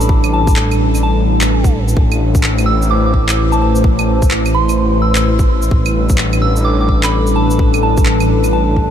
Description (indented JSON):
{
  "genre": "future garage",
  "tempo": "128 BPM",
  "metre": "4/4",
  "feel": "swing 63% on 16ths",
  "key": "unclear",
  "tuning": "A4 = 440 Hz",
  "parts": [
    { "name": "soft synth bell", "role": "melody", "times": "0.0-8.9 s", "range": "A5 to E6", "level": "-20 LUFS", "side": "right 1 dB", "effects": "chorus, phaser, tape echo" },
    { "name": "dark analog pad", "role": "sustained chords", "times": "0.0-8.9 s", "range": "G3 to C5", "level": "-17 LUFS", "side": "left 1 dB", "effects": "chorus, vintage 12-bit sampler grit, sidechain pumping" },
    { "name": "swelling detuned saw bass", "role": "bass", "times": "0.0-8.9 s", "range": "A1", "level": "-15 LUFS", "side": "equal", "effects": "sidechain pumping" },
    { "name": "electronic shaker, claves and handclaps", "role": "drums", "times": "0.0-8.5 s", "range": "none", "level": "-22 LUFS", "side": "right 1 dB", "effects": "none" },
    { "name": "electronic kick drum", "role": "drums", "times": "0.1-8.9 s", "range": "none", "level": "-13 LUFS", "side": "equal", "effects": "none" }
  ],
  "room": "light reverb, digital ambience",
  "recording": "none",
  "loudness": "-11 LUFS",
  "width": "side -9 dB against mid",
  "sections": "0.0-8.9 A section",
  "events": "none",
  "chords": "0.0 Gadd9/A; 2.0 Amadd9; 5.7 G69/A"
}